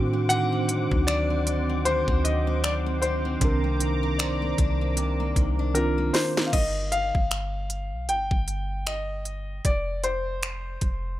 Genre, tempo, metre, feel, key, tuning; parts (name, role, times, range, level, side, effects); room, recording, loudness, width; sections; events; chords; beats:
contemporary R&B; 77 BPM; 4/4; swing 58% on 16ths; A4 = 438 Hz
mellow tine electric piano; accompaniment; 0.0-6.6 s; Eb3 to Bb4; -29 LUFS; right 3 dB; medium stereo tremolo
warm analog pad; sustained chords; 0.0-6.5 s; C4 to D6; -33 LUFS; right 2 dB; chorus
picked steel-string acoustic guitar; arpeggios; 0.0-7.1 s; C3 to Eb4; -33 LUFS; left 8 dB
soft 808-style bass; bass; 0.0-11.2 s; F1 to A2; -28 LUFS; equal
warm grand piano; melody; 0.3-11.2 s; Bb4 to G5; -28 LUFS; left 1 dB; tape echo
trap drum kit; drums; 0.3-11.0 s; crash cymbal, finger snaps, hi-hat, kick drum, snare drum; -26 LUFS; equal
soft synth bell; texture; 4.2-5.8 s; D5; -38 LUFS; left 5 dB; chorus, phaser, tape echo
little or no reverb; -23 LUFS; side -14 dB against mid
0.0-6.5 A section; 6.5-11.2 B section
drum fill 5.8-6.5
0.0 D7b9; 3.4 Cm9; 6.5 G7(no3); 9.6 F5
| 0.30 1.08 1.86 2.64 | 3.42 4.19 4.97 5.75 | 6.53 7.31 8.09 8.87 | 9.65 10.43